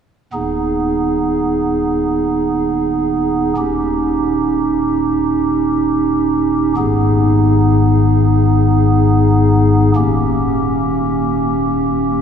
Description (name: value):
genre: classical, chorale-style piece for pipe organ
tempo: free time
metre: none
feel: none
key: G# minor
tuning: A4 = 440 Hz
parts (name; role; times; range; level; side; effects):
- pipe organ, stopped flute; solo; 0.3-12.2 s; D#1 to G#4; -13 LUFS; equal; none
room: wet cathedral reverb, RT60 4.6 s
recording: recorded in a church or concert hall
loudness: -13 LUFS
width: side -7 dB against mid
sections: 0.3-12.2 A section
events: none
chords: 0.3 G#m/D#; 3.6 D#7; 6.8 G#m; 10.0 D#7